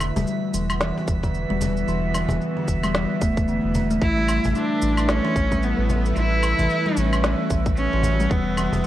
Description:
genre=organic downtempo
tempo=112 BPM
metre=4/4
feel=swing 59% on 16ths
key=unclear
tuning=A4 = 440 Hz
part: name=bowed-like drone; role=sustained chords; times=0.0-8.9 s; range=E3 to B4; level=-30 LUFS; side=right 2 dB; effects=built-in reverb, sidechain pumping
part: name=kalimba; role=arpeggios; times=0.0-8.9 s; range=D3 to A3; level=-25 LUFS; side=left 2 dB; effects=digital delay
part: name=round analog bass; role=bass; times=0.0-8.8 s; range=E1 to A1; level=-25 LUFS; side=equal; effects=tube saturation, sidechain pumping
part: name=electronic woodblock, shaker and snare drum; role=drums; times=0.0-8.9 s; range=none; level=-28 LUFS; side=equal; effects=none
part: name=cajon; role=percussion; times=0.0-8.8 s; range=none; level=-31 LUFS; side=left 1 dB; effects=none
part: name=drifting glass-harmonics texture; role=texture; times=0.0-8.9 s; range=E5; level=-33 LUFS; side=right 7 dB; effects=chorus, built-in reverb
part: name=electronic kick drum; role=drums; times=1.1-8.4 s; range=none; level=-24 LUFS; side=equal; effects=none
part: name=rich cello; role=melody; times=4.0-8.9 s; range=A3 to E4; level=-24 LUFS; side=equal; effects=digital delay
room=light reverb, digital ambience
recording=worn, warbling old tape, cassette tape, warbly pitch drift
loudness=-19 LUFS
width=side -13 dB against mid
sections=0.0-8.9 A section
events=none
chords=0.0 E7(no3); 4.0 Aadd9; 8.3 E5

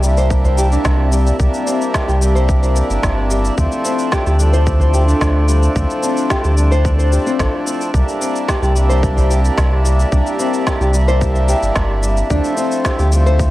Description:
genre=organic downtempo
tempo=110 BPM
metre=4/4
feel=straight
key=C mixolydian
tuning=A4 = 438 Hz
part: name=pedal harmonium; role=accompaniment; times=0.0-13.5 s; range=F3 to E4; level=-22 LUFS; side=right 1 dB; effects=sidechain pumping, tape echo
part: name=warbly tape-like pad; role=sustained chords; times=0.0-13.5 s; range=C4 to E5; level=-24 LUFS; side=left 1 dB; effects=chorus, built-in reverb, sidechain pumping
part: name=nylon-string guitar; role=arpeggios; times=0.0-13.4 s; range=G3 to C5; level=-22 LUFS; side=left 2 dB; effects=tape echo
part: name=warm sub bass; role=bass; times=0.0-13.5 s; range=G1 to D2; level=-14 LUFS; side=equal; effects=sidechain pumping
part: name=electronic cabasa and snare drum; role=drums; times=0.0-13.5 s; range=none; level=-24 LUFS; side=equal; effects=overdrive
part: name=drifting glass-harmonics texture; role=texture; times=1.0-13.5 s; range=D4 to D5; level=-31 LUFS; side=left 1 dB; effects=chorus, built-in reverb
part: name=electronic kick drum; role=drums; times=0.3-13.5 s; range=none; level=-20 LUFS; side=equal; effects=overdrive
part: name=udu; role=percussion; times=0.4-0.6, 4.8-4.9, 9.2-9.3 s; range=none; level=-21 LUFS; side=right 1 dB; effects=none
room=little or no reverb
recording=dry, gritty hardware recording, cassette tape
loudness=-13 LUFS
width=side -16 dB against mid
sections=0.0-13.5 A section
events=none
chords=0.0 C7; 3.6 Dm9; 7.9 C7; 12.3 Dm9

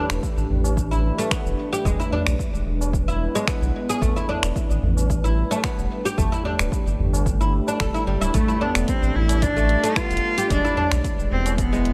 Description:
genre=organic downtempo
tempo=111 BPM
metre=4/4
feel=swing 53% on 16ths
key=unclear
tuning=A4 = 438 Hz
part: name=warbly tape-like pad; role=sustained chords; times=0.0-11.9 s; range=E3 to B4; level=-32 LUFS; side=equal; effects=chorus, built-in reverb, sidechain pumping
part: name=oud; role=arpeggios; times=0.0-11.9 s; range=G3 to A4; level=-29 LUFS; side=equal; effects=tape echo
part: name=round analog bass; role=bass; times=0.1-11.9 s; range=D1 to B1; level=-25 LUFS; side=equal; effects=tube saturation, sidechain pumping
part: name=deep house drum kit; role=drums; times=0.1-11.9 s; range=finger snaps, hi-hat, shaker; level=-31 LUFS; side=equal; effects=none
part: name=electronic kick drum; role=drums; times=0.2-11.7 s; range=none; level=-28 LUFS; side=equal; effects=none
part: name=tabla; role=percussion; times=0.5-11.9 s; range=none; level=-34 LUFS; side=equal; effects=none
part: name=warm cello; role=melody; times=8.3-11.9 s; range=A3 to F4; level=-26 LUFS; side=equal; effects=tape echo
room=light reverb, studio ambience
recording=none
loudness=-22 LUFS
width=mono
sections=0.0-11.9 A section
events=none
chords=0.0 A5; 1.9 E7; 4.0 A5; 6.2 G; 8.3 A5; 10.5 E7

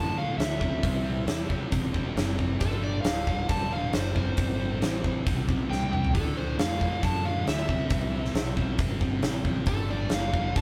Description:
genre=blues rock power trio and southern rock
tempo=136 BPM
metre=4/4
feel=straight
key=unclear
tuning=A4 = 440 Hz
part: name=overdriven slide guitar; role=melody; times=0.0-10.6 s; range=A4 to A5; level=-36 LUFS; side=equal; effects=none
part: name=overdriven electric guitar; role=riff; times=0.0-10.6 s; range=D2 to C4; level=-35 LUFS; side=equal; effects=none
part: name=fuzz fingered electric bass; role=bass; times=0.0-10.6 s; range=D1 to F#2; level=-34 LUFS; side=equal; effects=overdrive
part: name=huge arena drum kit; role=drums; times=0.4-10.6 s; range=hi-hat, kick drum, snare drum, toms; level=-31 LUFS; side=equal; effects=none
room=moderate large studio reverb, RT60 0.8 s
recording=band playing live in one room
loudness=-27 LUFS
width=mono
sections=0.0-10.6 A section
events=drum fill 5.7-6.1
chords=0.0 D; 0.6 C; 2.6 G5; 4.2 C5; 6.1 D; 7.7 C; 9.7 G5

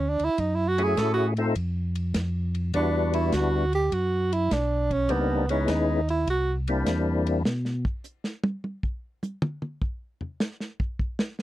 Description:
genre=soul jazz organ trio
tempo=102 BPM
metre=4/4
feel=swing 68% on 8ths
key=unclear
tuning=A4 = 440 Hz
part: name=breathy tenor saxophone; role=melody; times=0.0-6.5 s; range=B3 to A4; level=-26 LUFS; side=right 3 dB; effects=none
part: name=mellow tonewheel organ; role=bass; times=0.0-7.8 s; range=B1 to B2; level=-27 LUFS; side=equal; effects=overdrive, chorus vibrato, slow rotary speaker
part: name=warm soul drum kit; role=drums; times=0.2-11.4 s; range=hi-hat, kick drum, ride cymbal, snare drum, toms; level=-29 LUFS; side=equal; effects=none
part: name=percussive tonewheel organ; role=melody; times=0.8-7.4 s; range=G3 to A4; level=-26 LUFS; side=left 3 dB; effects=slow rotary speaker, overdrive, chorus vibrato
room=little or no reverb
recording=dry, close 1970s-style studio recording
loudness=-24 LUFS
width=side -15 dB against mid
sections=0.0-11.4 A section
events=tenor saxophone solo 0.0-11.4; drum solo 7.5-11.4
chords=0.4 F#m9; 1.6 N.C.; 2.7 Em9; 5.1 C#m9; 6.3 C9; 7.5 N.C.

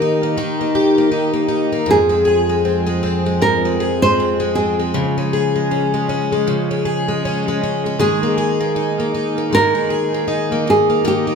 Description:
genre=acoustic pop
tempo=79 BPM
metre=4/4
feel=swing 60% on 16ths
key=unclear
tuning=A4 = 440 Hz
part: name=nylon-string guitar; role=melody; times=0.0-11.3 s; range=G4 to C5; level=-18 LUFS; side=right 2 dB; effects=none
part: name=picked plugged-in twelve-string acoustic guitar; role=accompaniment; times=0.0-11.3 s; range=F2 to Ab4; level=-18 LUFS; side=left 4 dB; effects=none
part: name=mellow tonewheel organ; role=sustained chords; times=0.0-11.3 s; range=Eb3 to Ab4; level=-26 LUFS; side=equal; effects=slow rotary speaker
part: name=direct-recorded clean electric guitar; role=arpeggios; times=0.0-11.3 s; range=Eb3 to Ab4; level=-24 LUFS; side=right 9 dB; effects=none
room=moderate large studio reverb, RT60 1.2 s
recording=band playing live in one room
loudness=-15 LUFS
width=side -6 dB against mid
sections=0.0-11.3 A section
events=none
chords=0.0 Eb; 1.9 Fm; 4.9 Db; 8.0 Absus2

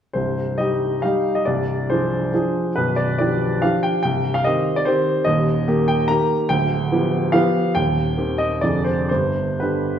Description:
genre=classical, romantic triple-time dance for piano with dotted rhythms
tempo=114-157 BPM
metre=3/4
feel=rubato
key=C minor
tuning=A4 = 439 Hz
part: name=clear baby grand piano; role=solo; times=0.1-10.0 s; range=B0 to Bb5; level=-18 LUFS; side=equal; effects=none
room=wet recital hall reverb, RT60 1.3 s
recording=recorded in a church or concert hall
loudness=-18 LUFS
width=side -9 dB against mid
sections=0.1-10.0 A section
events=none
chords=0.1 Cm; 1.4 Dm7b5/C; 2.7 G7/B; 4.0 Cm; 5.3 Eb; 6.5 G7/D; 7.7 Cm/Eb; 8.6 Ddim/F; 9.1 G

